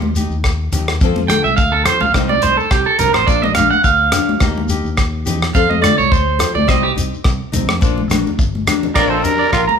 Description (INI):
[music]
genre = highlife guitar band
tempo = 106 BPM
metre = 4/4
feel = swing 54% on 16ths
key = Bb major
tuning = A4 = 439 Hz
[part]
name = nylon-string guitar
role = accompaniment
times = 0.0-9.4 s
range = F3 to A4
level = -22 LUFS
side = left 8 dB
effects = none
[part]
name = fingered electric bass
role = bass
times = 0.0-9.7 s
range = G1 to D3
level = -21 LUFS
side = equal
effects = none
[part]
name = congas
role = percussion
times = 0.0-9.8 s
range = none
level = -23 LUFS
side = left 1 dB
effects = none
[part]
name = damped 70s drum kit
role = drums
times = 0.2-9.7 s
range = crash cymbal, hi-hat, kick drum, rim click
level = -18 LUFS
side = equal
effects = none
[part]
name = shekere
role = percussion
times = 0.2-9.7 s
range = none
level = -26 LUFS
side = left 3 dB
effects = none
[part]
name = electric guitar at the edge of break-up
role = arpeggios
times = 1.3-9.7 s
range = G4 to Bb5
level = -15 LUFS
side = right 5 dB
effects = none
[part]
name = growling trumpet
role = melody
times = 9.0-9.7 s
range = F4 to D5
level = -17 LUFS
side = right 1 dB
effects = none
[part]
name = breathy tenor saxophone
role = second line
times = 9.0-9.7 s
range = D3 to Bb3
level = -27 LUFS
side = left 6 dB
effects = none
[sound]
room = moderate large studio reverb, RT60 1.1 s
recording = band playing live in one room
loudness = -13 LUFS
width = side -7 dB against mid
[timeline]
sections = 0.0-9.0 A section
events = clean electric guitar solo 0.0-9.0; drum fill 8.5-9.0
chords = 0.0 Eb; 1.0 F; 2.1 Cm; 3.3 Bb; 4.4 Eb; 5.6 F; 6.7 Cm; 7.8 Bb; 9.0 Bbadd9